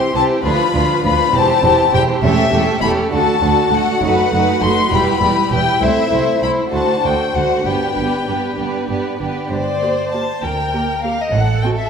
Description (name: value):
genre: quick classical-period movement for string orchestra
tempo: 66 BPM (dotted quarters)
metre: 6/8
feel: straight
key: G major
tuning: A4 = 440 Hz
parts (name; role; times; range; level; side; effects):
- warm chamber violin section; melody; 0.0-11.9 s; D5 to C6; -18 LUFS; left 6 dB; none
- rich chamber violin section; second line; 0.0-11.9 s; E4 to C5; -19 LUFS; right 1 dB; none
- warm chamber viola section; accompaniment; 0.0-11.7 s; E3 to G4; -21 LUFS; right 4 dB; none
- warm chamber cello section; bass; 0.1-11.9 s; C2 to C3; -24 LUFS; right 3 dB; none
- dark chamber double bass section; bass; 0.2-11.9 s; E1 to D2; -23 LUFS; right 2 dB; none
room: wet concert hall reverb, RT60 2.4 s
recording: minimal, uncompressed stereo recording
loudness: -14 LUFS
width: side -6 dB against mid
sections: 0.0-9.5 A section; 9.5-11.9 B section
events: none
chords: 0.4 Bdim/D; 1.3 C/E; 2.2 A7/E; 3.1 D; 4.0 B7/F#; 4.9 Em; 5.8 Am/C; 6.7 D7; 7.7 G; 9.5 Gm; 11.3 F#dim/A